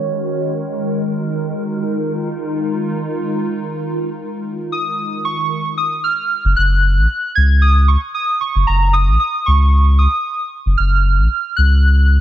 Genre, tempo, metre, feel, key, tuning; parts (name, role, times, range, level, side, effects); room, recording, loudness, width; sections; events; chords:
IDM; 114 BPM; 4/4; straight; F# major; A4 = 439 Hz
warbly lo-fi synth keys; melody; 0.0-1.0, 4.7-12.2 s; C#5 to G#6; -18 LUFS; right 2 dB; chorus, vintage 12-bit sampler grit, ping-pong delay
hollow soft pad; sustained chords; 0.0-5.5 s; D#3 to A#4; -21 LUFS; equal; ensemble chorus, vintage 12-bit sampler grit
warm sub bass; bass; 6.4-12.2 s; F#1 to C#2; -12 LUFS; equal
light reverb; low-pass filter; -14 LUFS; side -12 dB against mid
0.0-5.5 A section; 5.5-12.2 B section
filter sweep on analog synth pad 0.0-5.5; filter sweep 0.0-5.5
0.0 F#maj9; 5.5 F#5